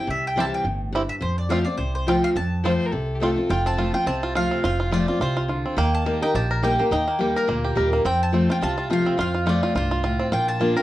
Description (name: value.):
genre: bluegrass.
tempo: 211 BPM.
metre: 4/4.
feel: swing 56% on 8ths.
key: F major, F mixolydian from 3.5 s.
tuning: A4 = 440 Hz.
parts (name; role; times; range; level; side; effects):
mandolin; melody; 0.0-10.8 s; Bb4 to A5; -27 LUFS; equal; none.
picked steel-string acoustic guitar; accompaniment; 0.0-10.8 s; F2 to G4; -24 LUFS; left 1 dB; none.
upright bass; bass; 0.1-10.7 s; F1 to F2; -26 LUFS; equal; none.
bluegrass banjo; arpeggios; 0.4-10.8 s; Bb3 to Bb4; -26 LUFS; right 2 dB; none.
clear fiddle; second line; 2.6-3.5 s; G4 to C5; -30 LUFS; left 3 dB; none.
room: moderate studio reverb, RT60 0.6 s.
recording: worn, warbling old tape, cassette tape, warbly pitch drift.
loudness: -20 LUFS.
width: side -15 dB against mid.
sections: 0.0-3.5 A section; 3.5-10.8 B section.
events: none.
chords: 0.0 C; 1.2 F; 5.8 Eb; 8.1 F; 10.3 Bb.